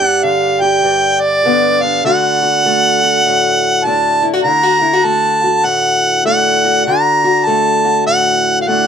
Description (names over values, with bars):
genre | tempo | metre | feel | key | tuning
acoustic country blues, solo or duo | 100 BPM | 4/4 | swing 62% on 8ths | unclear | A4 = 440 Hz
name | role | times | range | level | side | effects
warm harmonica | melody | 0.0-8.9 s | D5 to Bb5 | -12 LUFS | right 1 dB | none
fingerpicked steel-string acoustic guitar | accompaniment | 0.0-8.9 s | G2 to G4 | -16 LUFS | left 2 dB | none
room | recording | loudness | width
light reverb | close, detailed microphones | -10 LUFS | side -7 dB against mid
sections
0.0-8.9 A section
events
none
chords
0.0 G; 2.0 D